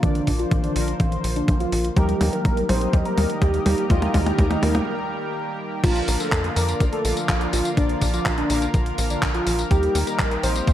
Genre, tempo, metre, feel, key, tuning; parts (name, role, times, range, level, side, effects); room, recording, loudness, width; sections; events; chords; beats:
italo disco; 124 BPM; 4/4; straight; Bb major; A4 = 440 Hz
wide unison lead; melody; 0.0-10.7 s; D4 to C5; -26 LUFS; equal; digital delay
lush unison pad; sustained chords; 0.0-10.7 s; D3 to C5; -28 LUFS; equal; chorus
mellow synth brass; stabs; 0.0-10.7 s; F3 to Eb5; -30 LUFS; left 2 dB; chorus, phaser, ping-pong delay
tight sequencer bass; bass; 0.0-10.7 s; Bb1 to F2; -24 LUFS; equal
clean 12-bit digital drum machine; drums; 0.0-10.7 s; crash cymbal, handclaps, hi-hat, tambourine, toms; -26 LUFS; equal; gated reverb
electronic kick drum; drums; 0.0-10.7 s; -21 LUFS; equal; overdrive
light reverb; vinyl crackle; -19 LUFS; side -12 dB against mid
0.0-5.8 A section; 5.8-10.7 B section
drum fill 0.0-4.9; filter sweep on analog synth pad 0.0-5.8; break 4.9-5.8
0.0 Bb; 2.0 Eb; 5.8 Bb; 9.7 Eb
| 0.03 0.51 1.00 1.48 | 1.97 2.45 2.93 3.42 | 3.90 4.38 4.87 5.35 | 5.84 6.32 6.80 7.29 | 7.77 8.26 8.74 9.22 | 9.71 10.19 10.68